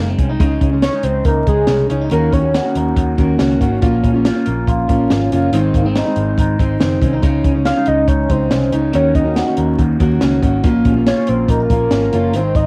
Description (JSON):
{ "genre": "jangly indie pop", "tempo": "141 BPM", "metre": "4/4", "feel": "straight", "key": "Eb dorian", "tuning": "A4 = 440 Hz", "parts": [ { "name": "electric guitar through a small old amp", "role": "arpeggios", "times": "0.0-12.7 s", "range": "Ab2 to Gb4", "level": "-22 LUFS", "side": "equal", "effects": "phaser, cassette tape, tape echo" }, { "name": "vintage muted picked electric bass", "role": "bass", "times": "0.0-12.7 s", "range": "Gb1 to Eb2", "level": "-21 LUFS", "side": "equal", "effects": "none" }, { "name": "compact cocktail drum kit", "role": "drums", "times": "0.2-12.7 s", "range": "hi-hat, kick drum, snare drum", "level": "-20 LUFS", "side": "equal", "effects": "none" }, { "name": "fingerpicked plugged-in steel-string acoustic guitar", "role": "accompaniment", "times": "0.4-12.7 s", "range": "Ab2 to Gb4", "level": "-22 LUFS", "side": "equal", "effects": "cassette tape" }, { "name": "warbly nostalgic lead", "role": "melody", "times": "0.8-2.8, 7.7-12.7 s", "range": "Ab4 to F5", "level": "-22 LUFS", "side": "equal", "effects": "chorus, cassette tape" } ], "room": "moderate studio reverb, RT60 0.6 s", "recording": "home recording on cassette, vinyl crackle", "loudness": "-15 LUFS", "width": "mono", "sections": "0.0-12.7 A section", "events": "none", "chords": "0.4 Dbsus2; 2.1 Ebm7; 3.8 Bbm; 5.5 Ab; 7.2 Dbsus2; 8.9 Ebm7; 10.6 Bbm", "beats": "| 0.40 0.82 1.25 1.68 | 2.11 2.54 2.96 3.39 | 3.82 4.25 4.67 5.10 | 5.53 5.95 6.38 6.81 | 7.23 7.66 8.09 8.51 | 8.94 9.36 9.79 10.21 | 10.64 11.06 11.49 11.91 | 12.34" }